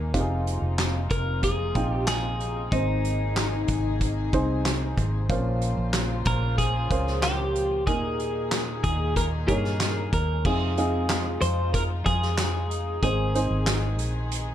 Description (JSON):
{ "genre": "piano-driven pop", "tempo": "93 BPM", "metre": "4/4", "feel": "straight", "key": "unclear", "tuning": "A4 = 440 Hz", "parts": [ { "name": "warm baby grand piano", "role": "accompaniment", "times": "0.0-14.5 s", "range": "Ab2 to G5", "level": "-30 LUFS", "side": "right 1 dB", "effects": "none" }, { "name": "warm studio string section", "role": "sustained chords", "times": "0.0-14.5 s", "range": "Bb2 to C5", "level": "-36 LUFS", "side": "left 2 dB", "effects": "none" }, { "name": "vintage muted fingered electric bass", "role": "bass", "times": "0.0-14.5 s", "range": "F1 to G2", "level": "-27 LUFS", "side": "equal", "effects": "none" }, { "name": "loose indie drum kit", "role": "drums", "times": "0.1-14.5 s", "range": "crash cymbal, handclaps, hi-hat, kick drum, snare drum", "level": "-28 LUFS", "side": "equal", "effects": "none" }, { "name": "twelve-string electric guitar", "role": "melody", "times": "1.1-14.0 s", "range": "Eb4 to C5", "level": "-29 LUFS", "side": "left 1 dB", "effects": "none" } ], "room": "small room reverb", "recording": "dark, warm production", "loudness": "-23 LUFS", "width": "side -11 dB against mid", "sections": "0.0-10.4 A section; 10.4-14.5 B section", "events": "none", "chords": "0.1 Fm7; 2.7 Ab; 5.3 Bbmadd9; 7.9 Ebsus4; 10.4 Fm7; 13.0 Ab" }